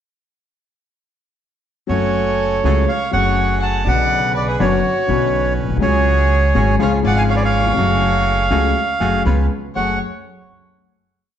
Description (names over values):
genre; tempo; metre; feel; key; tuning
tango; 122 BPM; 4/4; rubato; F# harmonic minor; A4 = 440 Hz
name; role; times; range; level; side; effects
bandoneon; melody; 1.9-10.0 s; B4 to A5; -19 LUFS; right 3 dB; none
warm violin; second line; 1.9-10.0 s; F#4 to F#5; -26 LUFS; left 4 dB; none
warm grand piano; accompaniment; 1.9-10.0 s; F#1 to A4; -20 LUFS; left 6 dB; none
bandoneon; stabs; 1.9-10.0 s; C#3 to G#5; -26 LUFS; right 2 dB; none
upright bass; bass; 1.9-10.0 s; F#1 to C#2; -19 LUFS; right 1 dB; none
room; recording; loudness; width
moderate large studio reverb, RT60 1.2 s; nothing above 7.9 kHz; -14 LUFS; side -9 dB against mid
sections
1.9-9.8 A section; 9.8-11.4 final chord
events
none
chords
1.9 F#madd9; 3.9 Bmadd9; 5.8 C#sus4; 6.8 C#; 7.8 F#madd9; 9.3 C#7; 9.8 F#madd9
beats
| 1.89 2.39 2.88 3.37 | 3.86 4.35 4.84 5.33 | 5.81 6.30 6.79 7.28 | 7.77 8.26 8.75 9.26 | 9.76